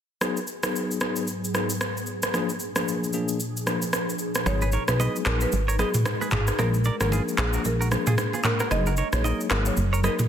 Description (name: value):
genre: afrobeats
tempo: 113 BPM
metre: 4/4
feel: swing 58% on 16ths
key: unclear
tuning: A4 = 440 Hz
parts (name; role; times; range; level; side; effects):
- bell-like tine electric piano; accompaniment; 0.2-10.2 s; F3 to Ab4; -30 LUFS; left 3 dB; medium stereo tremolo
- ethereal airy pad; sustained chords; 0.8-10.3 s; Ab2 to Cb5; -33 LUFS; equal; ensemble chorus, built-in reverb
- afro-pop drum kit; drums; 0.2-10.3 s; handclaps, rim click, shaker, toms; -27 LUFS; equal; soft clipping on snare
- buzzing marimba with hard mallets; melody; 4.5-10.2 s; Ab4 to Eb5; -31 LUFS; right 1 dB; none
- plucky analog bass; bass; 4.5-10.1 s; Gb1 to Cb2; -24 LUFS; equal; none
- congas and bongos; percussion; 4.5-10.3 s; none; -34 LUFS; right 7 dB; none
- direct-recorded clean electric guitar; riff; 4.6-10.1 s; F4 to Eb5; -32 LUFS; right 5 dB; none
room: light reverb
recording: dense, heavily limited modern master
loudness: -22 LUFS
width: side -9 dB against mid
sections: 0.2-4.5 A section; 4.5-10.3 B section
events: kick muted 4.5-10.3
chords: 0.2 Abm7; 2.3 Bb7; 4.5 Abm7; 6.6 Bb7; 8.7 Gb69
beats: | 0.21 0.74 1.28 1.81 | 2.34 2.87 3.40 3.93 | 4.46 4.99 5.52 6.05 | 6.59 7.12 7.65 8.18 | 8.71 9.24 9.77